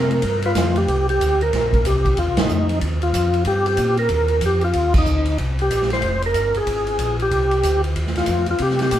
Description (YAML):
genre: soul jazz organ trio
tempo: 186 BPM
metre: 4/4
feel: swing 62% on 8ths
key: C minor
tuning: A4 = 440 Hz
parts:
  - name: percussive tonewheel organ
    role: melody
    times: 0.0-9.0 s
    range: Eb4 to C5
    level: -20 LUFS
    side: equal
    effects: overdrive, chorus vibrato, slow rotary speaker
  - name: mellow tonewheel organ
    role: bass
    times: 0.0-9.0 s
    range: F1 to C3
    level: -21 LUFS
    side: equal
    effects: chorus vibrato, slow rotary speaker
  - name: swinging big-band drum kit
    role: drums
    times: 0.1-9.0 s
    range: crash cymbal, hi-hat, kick drum, ride cymbal, snare drum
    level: -24 LUFS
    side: right 1 dB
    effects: none
room: moderate studio reverb, RT60 0.7 s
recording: band playing live in one room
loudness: -17 LUFS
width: side -11 dB against mid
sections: 0.9-9.0 A section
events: band accent 2.3, 4.9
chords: 0.2 G7; 0.9 Cm9; 6.0 Fm9